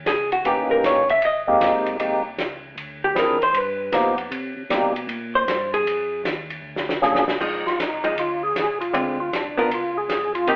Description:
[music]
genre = soul jazz organ trio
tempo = 155 BPM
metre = 4/4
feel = swing 66% on 8ths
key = Eb mixolydian, Bb mixolydian from 7.4 s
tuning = A4 = 440 Hz
[part]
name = mellow tonewheel organ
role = bass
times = 0.0-10.6 s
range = F1 to C3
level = -41 LUFS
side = equal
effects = chorus vibrato, slow rotary speaker
[part]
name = vintage hollow-body jazz guitar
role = accompaniment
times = 0.1-10.6 s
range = D3 to Fb5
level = -23 LUFS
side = equal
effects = none
[part]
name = vintage drum kit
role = drums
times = 0.1-10.6 s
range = crash cymbal, hi-hat, kick drum, ride cymbal, snare drum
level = -30 LUFS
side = equal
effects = none
[part]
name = percussive tonewheel organ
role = melody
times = 0.5-10.5 s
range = Fb3 to Ab4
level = -24 LUFS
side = equal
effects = slow rotary speaker, chorus vibrato
[sound]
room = wet studio reverb, RT60 0.8 s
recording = heard from further back in the room, telephone sound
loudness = -22 LUFS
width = mono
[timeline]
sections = 0.0-7.4 A section; 7.4-10.6 A section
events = hollow-body jazz guitar solo 0.0-7.4; drum fill 6.6-7.4; tonewheel organ solo 7.4-10.6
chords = 0.0 Eb7b9; 1.2 Abmaj7; 2.8 Dm7b5; 3.5 G7alt; 4.3 C7(no3); 5.9 Fm7; 6.6 Bb7alt; 7.4 Bb7sus4; 8.9 Dm7b5; 9.7 Db

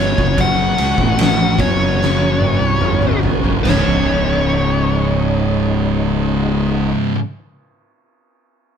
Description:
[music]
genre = stoner and doom metal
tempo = 71-76 BPM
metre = 4/4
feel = straight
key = unclear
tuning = A4 = 440 Hz
[part]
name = fuzz lead guitar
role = melody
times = 0.0-6.9 s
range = C#5 to F#5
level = -20 LUFS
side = left 1 dB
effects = wah, distortion
[part]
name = overdriven tonewheel organ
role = sustained chords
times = 0.0-6.9 s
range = C#3 to G#5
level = -26 LUFS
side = equal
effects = slow rotary speaker, chorus vibrato
[part]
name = thick fuzz guitar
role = riff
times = 0.0-7.2 s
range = C#2 to A3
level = -22 LUFS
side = left 11 dB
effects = distortion
[part]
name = thick fuzz guitar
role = riff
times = 0.0-7.2 s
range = C#2 to A3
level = -20 LUFS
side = right 6 dB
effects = distortion
[part]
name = fuzz fingered electric bass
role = bass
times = 0.0-6.9 s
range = C#1 to C#2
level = -21 LUFS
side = equal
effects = overdrive
[part]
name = oversized low-tuned drum kit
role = drums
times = 0.2-3.9 s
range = crash cymbal, kick drum, ride cymbal, snare drum, toms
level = -18 LUFS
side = equal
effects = none
[sound]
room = light reverb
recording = band playing live in one room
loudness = -13 LUFS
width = side -7 dB against mid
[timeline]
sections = 0.0-3.6 A section; 3.6-7.0 B section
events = slowing down 0.0-3.6; drum fill 2.0-3.6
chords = 0.0 F#5; 3.6 C#5

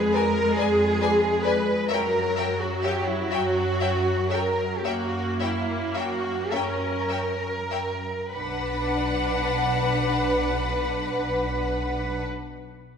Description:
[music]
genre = classical, slow romantic movement for string orchestra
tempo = 32-46 BPM (dotted quarters)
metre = 12/8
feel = rubato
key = B minor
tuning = A4 = 442 Hz
[part]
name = rich symphonic viola section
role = accompaniment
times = 0.0-12.3 s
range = F#3 to D4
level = -29 LUFS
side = left 1 dB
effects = none
[part]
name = rich symphonic cello section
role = bass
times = 0.0-12.3 s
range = E4 to Cb5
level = -26 LUFS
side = right 1 dB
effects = none
[part]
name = rich symphonic double bass section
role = bass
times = 0.0-12.3 s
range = B1 to F#2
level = -31 LUFS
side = right 2 dB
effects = none
[part]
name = warm symphonic violin section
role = second line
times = 0.1-12.2 s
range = Cb5 to E5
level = -32 LUFS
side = left 5 dB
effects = none
[part]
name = warm symphonic violin section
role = melody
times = 0.2-12.2 s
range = F#5 to Ab5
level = -32 LUFS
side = left 5 dB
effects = none
[sound]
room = wet concert hall reverb, RT60 2.0 s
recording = minimal, uncompressed stereo recording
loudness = -22 LUFS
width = side -7 dB against mid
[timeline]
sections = 0.0-8.3 A section; 8.3-13.0 B section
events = slowing down 0.0-8.3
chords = 0.0 Fdim; 1.9 F#7; 8.3 Bm

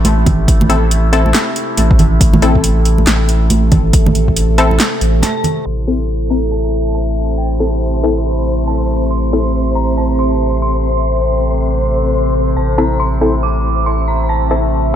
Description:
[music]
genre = deep dubstep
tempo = 139 BPM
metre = 4/4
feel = swing 61% on 16ths, half-time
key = A minor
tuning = A4 = 440 Hz
[part]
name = overtone-sweeping drone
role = sustained chords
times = 0.0-15.0 s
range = C3 to A4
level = -19 LUFS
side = equal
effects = chorus, built-in reverb
[part]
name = saturated sub bass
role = bass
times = 0.0-15.0 s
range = A1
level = -15 LUFS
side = equal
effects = none
[part]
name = deep house drum kit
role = drums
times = 0.0-5.5 s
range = handclaps, hi-hat, snare drum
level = -18 LUFS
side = equal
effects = overdrive, studio ambience
[part]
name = congas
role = percussion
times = 0.0-5.5 s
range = none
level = -18 LUFS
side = right 3 dB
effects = none
[part]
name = electronic kick drum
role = drums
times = 0.3-4.3 s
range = none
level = -13 LUFS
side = equal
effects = overdrive, studio ambience
[part]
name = filtered dub chord stab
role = stabs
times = 0.7-9.5, 12.8-14.6 s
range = C4 to A4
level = -19 LUFS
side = left 4 dB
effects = chorus, dub echo
[part]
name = dark detuned synth bell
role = melody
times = 5.2-14.9 s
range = G5 to D6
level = -24 LUFS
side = right 1 dB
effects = chorus, tremolo, phaser, dub echo
[part]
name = wind-like tuned noise texture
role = texture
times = 7.0-15.0 s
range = C4 to C5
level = -22 LUFS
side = equal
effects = built-in reverb
[sound]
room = light reverb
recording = low-pass filter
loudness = -11 LUFS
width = side -10 dB against mid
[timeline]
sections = 0.0-5.7 A section; 5.7-15.0 B section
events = break 5.2-5.7; filter sweep 5.7-15.0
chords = 0.0 Am

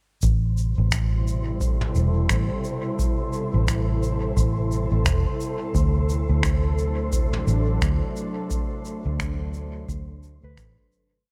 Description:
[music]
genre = ambient dub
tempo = 87 BPM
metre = 4/4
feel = swing 59% on 16ths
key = A dorian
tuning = A4 = 440 Hz
[part]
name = airy breathy pad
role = sustained chords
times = 0.6-11.3 s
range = B2 to A4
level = -32 LUFS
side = equal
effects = chorus
[part]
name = vintage muted fingered electric bass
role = bass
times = 0.2-10.8 s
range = E1 to D2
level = -25 LUFS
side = equal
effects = none
[part]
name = electronic kick drum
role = drums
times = 0.2-10.7 s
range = none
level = -29 LUFS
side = equal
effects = overdrive
[part]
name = vintage brush drum kit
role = drums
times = 0.2-11.1 s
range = finger snaps, shaker, toms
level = -32 LUFS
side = equal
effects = dub echo
[part]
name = wind-like tuned noise texture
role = texture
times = 0.8-11.3 s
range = C5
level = -39 LUFS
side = equal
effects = built-in reverb
[part]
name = soft synth bell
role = arpeggios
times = 10.4-11.3 s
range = B4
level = -64 LUFS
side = equal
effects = chorus
[sound]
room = small room ambience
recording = none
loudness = -24 LUFS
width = mono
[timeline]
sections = 0.2-11.3 groove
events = fade-out 7.6-11.3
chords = 0.2 Am9; 5.7 D7

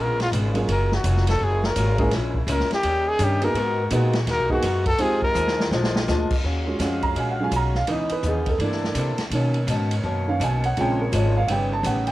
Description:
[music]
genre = jazz, big band swing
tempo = 167 BPM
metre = 4/4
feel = swing 63% on 8ths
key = Eb minor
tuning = A4 = 444 Hz
[part]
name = breathy trumpet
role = melody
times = 0.0-5.7 s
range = F4 to Bb4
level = -24 LUFS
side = left 1 dB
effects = plate reverb
[part]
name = picked acoustic archtop guitar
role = accompaniment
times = 0.0-12.1 s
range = Bb2 to Bb4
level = -29 LUFS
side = left 2 dB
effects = cassette tape, plate reverb
[part]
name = bright saxophone section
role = sustained chords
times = 0.0-12.1 s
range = Bb2 to F5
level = -34 LUFS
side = equal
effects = cassette tape, plate reverb
[part]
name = upright bass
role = bass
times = 0.0-12.1 s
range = F1 to C3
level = -24 LUFS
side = equal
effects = none
[part]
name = swinging big-band drum kit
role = drums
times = 0.2-12.1 s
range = crash cymbal, hi-hat, kick drum, ride cymbal, snare drum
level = -29 LUFS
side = equal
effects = cassette tape
[part]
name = warm grand piano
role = accompaniment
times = 0.5-12.1 s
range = Db3 to Bb5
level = -26 LUFS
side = right 2 dB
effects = cassette tape, plate reverb
[sound]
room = light reverb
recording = home recording on cassette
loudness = -20 LUFS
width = side -16 dB against mid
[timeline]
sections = 0.0-6.4 A section; 6.4-12.1 A section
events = trumpet solo 0.0-6.4; drum fill 5.4-6.1; grand piano solo 6.4-12.1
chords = 0.0 Db7; 0.7 Gbmaj9; 2.1 Bbm7b5; 2.8 Eb7; 3.6 Abm9; 5.0 Fm7; 5.7 Bb7; 6.4 Ebm11; 7.9 Dbm9; 8.6 C13; 9.3 Bmaj9; 10.8 Bbm7; 11.5 Ebaug7

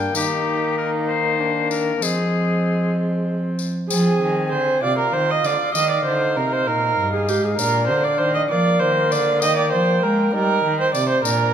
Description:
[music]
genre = classical, renaissance-style consort dance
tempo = 65 BPM (dotted quarters)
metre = 6/8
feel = straight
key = unclear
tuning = A4 = 440 Hz
[part]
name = clear oboe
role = melody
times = 0.0-11.5 s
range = G4 to Bb5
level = -27 LUFS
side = left 8 dB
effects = none
[part]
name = warm viola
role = second line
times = 0.0-11.5 s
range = C4 to Eb5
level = -20 LUFS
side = right 4 dB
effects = none
[part]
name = warm bassoon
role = accompaniment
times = 0.0-11.5 s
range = Ab3 to F4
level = -26 LUFS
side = left 4 dB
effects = none
[part]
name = rich cello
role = bass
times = 0.0-11.5 s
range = G2 to Ab3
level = -23 LUFS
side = equal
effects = none
[part]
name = tambourine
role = percussion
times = 0.1-11.5 s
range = none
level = -28 LUFS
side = left 8 dB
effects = none
[sound]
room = wet recital hall reverb, RT60 1.5 s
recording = none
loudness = -17 LUFS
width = side -8 dB against mid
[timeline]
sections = 0.0-3.9 A section; 3.9-11.5 A section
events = none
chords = 0.2 Eb; 2.0 Fm; 5.7 Eb; 7.6 Bb; 9.4 Eb

